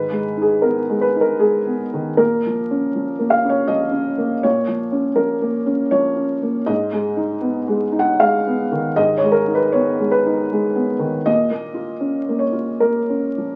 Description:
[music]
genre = neoclassical minimalist piano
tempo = 79 BPM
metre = 3/4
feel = rubato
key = G# dorian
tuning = A4 = 441 Hz
[part]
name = felt-muted upright piano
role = solo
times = 0.0-13.6 s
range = G#2 to F#5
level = -19 LUFS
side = equal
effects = none
[sound]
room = wet studio reverb, RT60 0.7 s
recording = very old 78 rpm record, vinyl crackle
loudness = -19 LUFS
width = mono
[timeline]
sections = 0.0-13.6 A section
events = none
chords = 0.0 G#m; 2.2 A#m; 6.7 G#m; 11.3 A#m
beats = 0.64 1.42 | 2.19 2.95 3.69 | 4.44 5.19 5.93 | 6.68 7.44 8.20 | 8.97 9.73 10.50 | 11.26 12.03 12.82

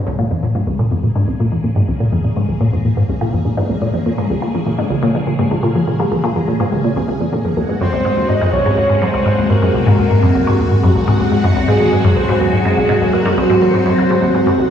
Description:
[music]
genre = ambient, sequencer-driven space music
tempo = 124 BPM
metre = 4/4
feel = straight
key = Bb minor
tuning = A4 = 440 Hz
[part]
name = phased string machine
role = sustained chords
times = 0.0-14.7 s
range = C3 to Ab4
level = -19 LUFS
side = equal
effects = ensemble chorus, phaser
[part]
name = resonant blip pluck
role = riff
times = 0.1-14.6 s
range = C2 to Bb2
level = -15 LUFS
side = equal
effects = phaser, tape echo
[part]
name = breathy flute-like synth lead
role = melody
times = 7.8-14.7 s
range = Ab4 to Eb5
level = -18 LUFS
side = equal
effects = analog chorus, tape echo
[sound]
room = wet echo chamber reverb, RT60 2.0 s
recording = echo-heavy mix, small room reverb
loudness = -13 LUFS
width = side -9 dB against mid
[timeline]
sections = 0.0-14.7 A section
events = fade-in on string machine 0.0-14.7; filter sweep on synth arpeggio sound 0.0-14.7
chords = 0.0 Bbm7; 7.6 Ab7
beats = 0.31 0.79 1.28 | 1.76 2.25 2.73 3.21 | 3.70 4.18 4.66 5.15 | 5.63 6.12 6.60 7.08 | 7.57 8.05 8.54 9.02 | 9.50 9.99 10.47 10.96 | 11.44 11.92 12.41 12.89 | 13.37 13.86 14.34

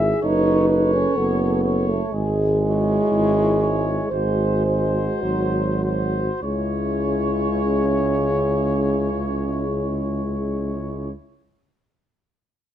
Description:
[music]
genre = classical, hymn-like piece for brass band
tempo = 48-67 BPM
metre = 4/4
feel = rubato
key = C# minor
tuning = A4 = 440 Hz
[part]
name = mellow trumpet section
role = melody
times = 0.0-11.1 s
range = B#4 to E5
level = -28 LUFS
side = equal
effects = none
[part]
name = mellow French horn section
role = second line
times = 0.0-11.1 s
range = D#4 to B#4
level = -27 LUFS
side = left 1 dB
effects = none
[part]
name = clear euphonium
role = accompaniment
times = 0.0-11.1 s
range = G#3 to A4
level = -29 LUFS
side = left 4 dB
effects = none
[part]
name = warm euphonium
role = accompaniment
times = 0.0-11.1 s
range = C#3 to E4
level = -24 LUFS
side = right 2 dB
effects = none
[part]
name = mellow tuba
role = bass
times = 0.0-11.1 s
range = F#1 to C#2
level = -23 LUFS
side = equal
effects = none
[sound]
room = light reverb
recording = close, detailed microphones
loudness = -19 LUFS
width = side -10 dB against mid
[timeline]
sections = 0.0-6.4 A section; 6.4-11.0 B section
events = slowing down 0.0-6.4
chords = 0.2 F#m; 2.1 C#m/G#; 4.1 G#7; 6.4 C#m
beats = 0.23 1.17 | 2.13 3.12 4.12 5.23 | 6.43 7.57 8.73 9.89

